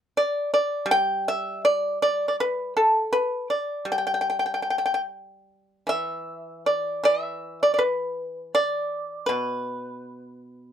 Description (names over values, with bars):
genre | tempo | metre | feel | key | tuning
chinese traditional, Chinese solo plucked strings | 72-83 BPM | 4/4 | rubato | G gong mode | A4 = 439 Hz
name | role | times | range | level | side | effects
pipa | solo | 0.2-10.7 s | B2 to G5 | -22 LUFS | equal | none
room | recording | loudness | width
light reverb | close, detailed microphones | -22 LUFS | side -9 dB against mid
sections
0.0-5.5 A section; 5.5-10.7 B section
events
none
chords
none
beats
0.15 0.88 1.61 | 2.36 3.11 3.88 4.70 | 5.51 6.29 7.07 7.83 | 8.58 9.33 10.07